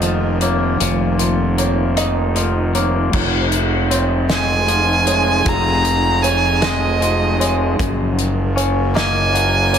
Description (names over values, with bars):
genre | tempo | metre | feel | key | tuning
post-rock | 52 BPM (dotted quarters) | 6/8 | straight | unclear | A4 = 441 Hz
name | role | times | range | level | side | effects
evolving wavetable pad | sustained chords | 0.0-9.8 s | C3 to Bb4 | -24 LUFS | right 2 dB | chorus, built-in reverb
felt-muted upright piano | arpeggios | 0.0-9.8 s | Db5 to Eb5 | -25 LUFS | right 4 dB | tape echo
twangy electric guitar | arpeggios | 0.0-9.8 s | F2 to Eb4 | -22 LUFS | left 4 dB | tape echo
fuzz fingered electric bass | bass | 0.0-9.8 s | F1 to Gb1 | -19 LUFS | equal | overdrive
loose indie drum kit | drums | 0.0-9.8 s | crash cymbal, hi-hat, kick drum, snare drum | -22 LUFS | left 2 dB | none
clear violin | melody | 4.3-9.8 s | Eb5 to Bb5 | -18 LUFS | right 2 dB | tape echo
room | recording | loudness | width
light reverb, small room ambience | none | -14 LUFS | side -8 dB against mid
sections
0.0-3.1 A section; 3.1-9.8 B section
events
none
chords
0.0 Bbsus4/F; 3.1 Fm7; 7.8 Gbmaj7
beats
| 0.81 1.97 | 3.14 4.30 | 5.47 6.63 | 7.80 8.96